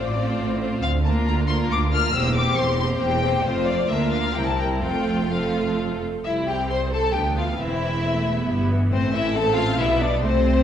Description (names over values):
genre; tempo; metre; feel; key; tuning
quick classical-period movement for string orchestra; 136 BPM; 3/4; rubato; F major, C major from 6.2 s; A4 = 440 Hz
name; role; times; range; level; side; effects
rich chamber violin section; melody; 0.0-10.6 s; C5 to F6; -26 LUFS; left 5 dB; none
rich chamber violin section; second line; 0.0-10.6 s; C4 to C5; -25 LUFS; left 2 dB; none
rich symphonic viola section; accompaniment; 0.0-10.6 s; E3 to D4; -27 LUFS; right 2 dB; none
rich chamber double bass section; bass; 0.0-10.6 s; E1 to D2; -26 LUFS; right 1 dB; none
rich studio cello section; bass; 0.0-10.6 s; C2 to C3; -28 LUFS; right 2 dB; none
room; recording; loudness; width
wet recital hall reverb, RT60 1.4 s; heard from further back in the room; -20 LUFS; side -9 dB against mid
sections
0.0-6.2 A section; 6.2-10.6 B section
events
none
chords
0.0 F/A; 0.8 Bb/D; 2.1 C7/E; 3.5 F; 3.9 Bb/D; 4.4 C7; 4.8 F; 6.2 C; 7.6 C/E; 8.9 Am